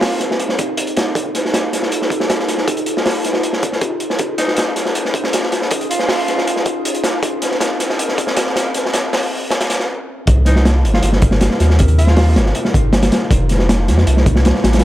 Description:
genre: drum and bass, jungle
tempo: 158 BPM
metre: 4/4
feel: straight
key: C phrygian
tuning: A4 = 441 Hz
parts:
  - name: growling tenor saxophone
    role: melody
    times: 0.0-0.2, 4.4-6.6, 10.5-12.4 s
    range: Eb4 to F4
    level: -26 LUFS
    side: right 1 dB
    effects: dub echo
  - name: warbly tape-like pad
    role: sustained chords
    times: 0.0-14.8 s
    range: A3 to Bb4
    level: -23 LUFS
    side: left 1 dB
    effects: chorus, built-in reverb, vintage 12-bit sampler grit
  - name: crunchy breakbeat drum kit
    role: drums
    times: 0.0-14.8 s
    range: hi-hat, kick drum, snare drum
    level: -16 LUFS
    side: equal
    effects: high-pass filter on kick, high-pass filter on hats, high-pass filter on snare, high-pass filter on room
  - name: saturated sub bass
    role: bass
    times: 10.3-14.8 s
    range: F1 to F2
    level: -13 LUFS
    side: equal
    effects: none
room: small room ambience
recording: none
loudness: -14 LUFS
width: side -13 dB against mid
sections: 0.0-10.3 A section; 10.3-14.8 B section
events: build-up 0.0-10.3; stop 9.9-10.3; drop 10.3-14.8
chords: 0.0 Cm7; 1.2 F9; 4.2 Eb9sus4; 7.2 Bbm9; 10.3 Cm7; 13.3 F9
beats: 0.02 0.40 0.78 | 1.16 1.54 1.92 2.30 | 2.68 3.06 3.44 3.81 | 4.20 4.58 4.96 5.33 | 5.71 6.09 6.47 6.85 | 7.23 7.61 7.99 8.37 | 8.75 9.13 9.51 9.89 | 10.27 10.65 11.03 11.41 | 11.79 12.17 12.55 12.93 | 13.31 13.69 14.07 14.45 | 14.83

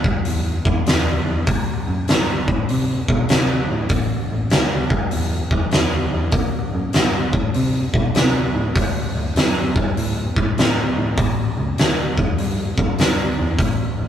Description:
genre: blues rock power trio and southern rock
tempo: 99 BPM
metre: 4/4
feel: swing 66% on 8ths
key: unclear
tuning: A4 = 439 Hz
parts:
  - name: vintage muted picked electric bass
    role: bass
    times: 0.0-14.1 s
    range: A1 to C3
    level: -23 LUFS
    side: equal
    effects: none
  - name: oversized low-tuned drum kit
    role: drums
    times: 0.0-13.8 s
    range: hi-hat, kick drum, snare drum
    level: -18 LUFS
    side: equal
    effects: none
room: moderate booth ambience, RT60 0.2 s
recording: rough rehearsal-room recording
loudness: -17 LUFS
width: side -10 dB against mid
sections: 0.0-14.1 A section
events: none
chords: none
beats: 0.26 0.86 | 1.47 2.08 2.69 3.29 | 3.90 4.51 5.11 5.72 | 6.33 6.93 7.54 8.15 | 8.76 9.36 9.97 10.57 | 11.18 11.78 12.38 12.99 | 13.59

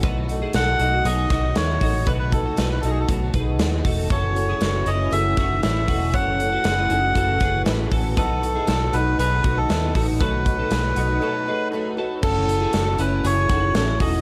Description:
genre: jangly indie pop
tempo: 118 BPM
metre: 4/4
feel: straight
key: B mixolydian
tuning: A4 = 442 Hz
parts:
  - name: picked twelve-string acoustic guitar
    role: accompaniment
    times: 0.0-14.2 s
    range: F#2 to F#4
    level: -31 LUFS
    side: equal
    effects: plate reverb
  - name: twelve-string electric guitar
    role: arpeggios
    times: 0.0-14.2 s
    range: B3 to C#5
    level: -32 LUFS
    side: equal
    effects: ensemble chorus, plate reverb
  - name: vintage muted fingered electric bass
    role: bass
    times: 0.0-14.2 s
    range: E1 to D#2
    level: -26 LUFS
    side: equal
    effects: none
  - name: big rock drum kit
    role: drums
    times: 0.0-14.1 s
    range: crash cymbal, hi-hat, kick drum, snare drum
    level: -27 LUFS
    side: equal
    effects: gated reverb
  - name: melodica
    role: melody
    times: 0.6-14.2 s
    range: G#4 to F#5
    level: -27 LUFS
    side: equal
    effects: plate reverb, delay
  - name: warbly lo-fi synth keys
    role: accompaniment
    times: 4.1-14.2 s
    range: C#4 to C#5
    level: -34 LUFS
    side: equal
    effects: chorus, plate reverb
room: light reverb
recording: vinyl crackle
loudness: -21 LUFS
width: mono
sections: 0.0-12.2 A section; 12.2-14.2 A section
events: break 11.2-12.2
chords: 0.0 B7; 4.1 F#m7; 8.2 B7; 12.2 F#m7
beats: | 0.03 0.54 1.05 1.56 | 2.07 2.58 3.09 3.59 | 4.10 4.61 5.12 5.63 | 6.14 6.64 7.15 7.66 | 8.17 8.68 9.19 9.69 | 10.20 10.71 11.22 11.72 | 12.23 12.74 13.25 13.75

